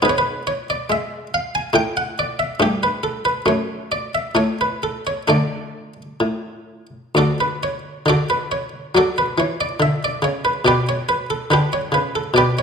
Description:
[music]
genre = classical, baroque-style suite movement for harpsichord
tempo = 63-71 BPM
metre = 3/4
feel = rubato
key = D major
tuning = A4 = 440 Hz
[part]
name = buff-stop harpsichord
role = solo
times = 0.0-12.6 s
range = D2 to G#5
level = -18 LUFS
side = equal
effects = none
[sound]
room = moderate recital hall reverb, RT60 1.6 s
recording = minimal, uncompressed stereo recording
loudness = -18 LUFS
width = side -6 dB against mid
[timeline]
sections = 0.0-8.1 A section; 8.1-12.6 B section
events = none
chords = 0.0 G#m; 1.7 N.C.; 2.6 Gadd9; 3.4 F#m7; 4.3 N.C.; 5.3 D5; 8.1 D; 9.8 Bmadd9; 10.6 G/B

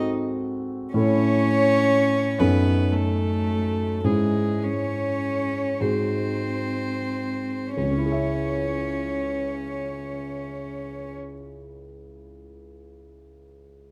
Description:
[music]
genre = classical, slow romantic movement for piano trio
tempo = 29-43 BPM (dotted quarters)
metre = 6/8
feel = rubato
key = C# minor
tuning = A4 = 440 Hz
[part]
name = warm concert grand piano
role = accompaniment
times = 0.0-13.9 s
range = C#2 to E5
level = -27 LUFS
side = equal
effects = none
[part]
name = warm violin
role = melody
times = 0.9-11.1 s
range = G#4 to C#5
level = -31 LUFS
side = equal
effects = none
[part]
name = warm cello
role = second line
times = 0.9-11.1 s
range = G#3 to C#4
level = -30 LUFS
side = equal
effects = none
[sound]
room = moderate recital hall reverb, RT60 1.3 s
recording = close, detailed microphones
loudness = -24 LUFS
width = mono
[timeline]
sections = 0.0-7.8 A section; 7.8-11.7 B section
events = slowing down 0.0-7.8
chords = 0.0 G#7b9; 0.9 A; 2.4 D#m7b5/F#; 4.0 C#m/G#; 5.8 G#7; 7.8 C#m

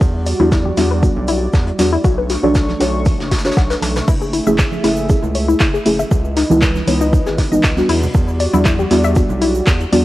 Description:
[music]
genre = deep house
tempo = 118 BPM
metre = 4/4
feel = swing 53% on 16ths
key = unclear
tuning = A4 = 439 Hz
[part]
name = warm analog pad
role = sustained chords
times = 0.0-10.0 s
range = E3 to C#6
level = -23 LUFS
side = equal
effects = chorus, vintage 12-bit sampler grit, sidechain pumping, cassette tape
[part]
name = deep mellow chord stab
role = stabs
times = 0.0-10.0 s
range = E3 to D5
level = -18 LUFS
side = equal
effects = chorus, sidechain pumping, cassette tape, tape echo
[part]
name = round analog bass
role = bass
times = 0.0-10.0 s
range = F#1 to E2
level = -20 LUFS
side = equal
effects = sidechain pumping
[part]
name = electronic kick drum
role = drums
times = 0.0-9.8 s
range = none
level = -15 LUFS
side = equal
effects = overdrive
[part]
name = vintage brush drum kit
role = drums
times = 0.0-10.0 s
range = hi-hat, shaker, snare drum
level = -30 LUFS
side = equal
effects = sidechain pumping on hats, high-pass filter on hats, high-pass filter on snare, sidechain pumping on perc, high-pass filter on perc, high-pass filter on room
[part]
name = analog pluck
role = arpeggios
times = 0.3-10.0 s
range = D#4 to A5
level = -21 LUFS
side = left 4 dB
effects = chorus, sidechain pumping, cassette tape, tape echo
[part]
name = punchy analog drum machine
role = drums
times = 0.3-10.0 s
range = crash cymbal, handclaps, hi-hat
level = -24 LUFS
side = right 1 dB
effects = none
[part]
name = congas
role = percussion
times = 0.4-10.0 s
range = none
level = -29 LUFS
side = right 8 dB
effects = none
[part]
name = egg shaker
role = percussion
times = 4.1-9.9 s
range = none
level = -38 LUFS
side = right 9 dB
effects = none
[sound]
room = light reverb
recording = home recording on cassette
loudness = -13 LUFS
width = side -16 dB against mid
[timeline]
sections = 0.0-10.0 A section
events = filter sweep on synth stab 0.0-10.0; filter sweep on synth arpeggio sound 0.0-10.0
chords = 0.0 Em9; 2.0 Bm9; 4.1 F#m9; 6.1 C#m9; 7.9 Em9

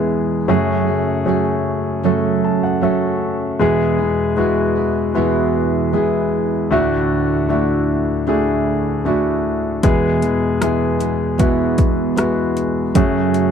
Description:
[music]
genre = pop ballad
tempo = 77 BPM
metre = 4/4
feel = straight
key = E major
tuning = A4 = 440 Hz
[part]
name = warm concert grand piano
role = accompaniment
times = 0.0-13.5 s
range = D2 to A5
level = -17 LUFS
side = left 3 dB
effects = none
[part]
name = nylon-string guitar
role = arpeggios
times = 0.0-13.5 s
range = E2 to G#4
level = -21 LUFS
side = right 14 dB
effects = none
[part]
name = 80s electronic pad drums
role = drums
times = 9.8-13.5 s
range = hi-hat, kick drum, rim click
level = -17 LUFS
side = equal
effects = overdrive
[sound]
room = light reverb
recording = dry, close 1970s-style studio recording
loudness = -15 LUFS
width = side -7 dB against mid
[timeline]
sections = 0.0-13.5 A section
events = grand piano fill 2.0-3.6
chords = 0.5 F#madd9; 3.6 E; 6.7 Dadd9; 9.8 E; 13.0 F#madd9

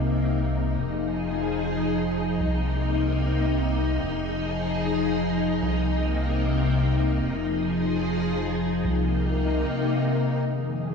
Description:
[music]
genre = IDM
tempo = free time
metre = none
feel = none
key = F minor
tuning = A4 = 441 Hz
[part]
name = soft string machine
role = sustained chords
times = 0.0-10.9 s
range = F2 to Ab4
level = -24 LUFS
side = left 2 dB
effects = ensemble chorus, shimmer reverb
[part]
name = rubbery square bass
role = bass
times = 0.0-9.6 s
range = F1 to C2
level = -28 LUFS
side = right 1 dB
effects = tube saturation
[part]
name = backwards swelling texture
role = texture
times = 10.5-10.9 s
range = none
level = barely audible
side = none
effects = none
[sound]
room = light reverb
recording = studio ambience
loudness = -23 LUFS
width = side -5 dB against mid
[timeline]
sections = 0.0-10.5 A section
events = none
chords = 0.0 Cm7; 0.8 Fm7; 2.4 Cm7; 4.0 Fm7; 5.6 Cm7; 7.2 Fm7; 8.8 Cm7

